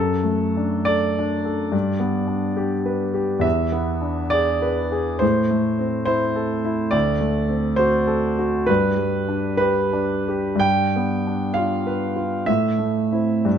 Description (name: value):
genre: classical, romantic nocturne for solo piano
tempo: 54-73 BPM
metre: 4/4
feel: rubato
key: unclear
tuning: A4 = 440 Hz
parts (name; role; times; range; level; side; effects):
- warm grand piano; solo; 0.0-13.6 s; D2 to G5; -19 LUFS; equal; none
room: light reverb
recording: close, detailed microphones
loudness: -19 LUFS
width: side -8 dB against mid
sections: 0.0-13.6 A section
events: none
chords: 0.0 D/F#; 1.7 G; 3.4 E7; 5.2 Am; 6.9 D7; 8.7 G; 10.6 G7; 12.5 Am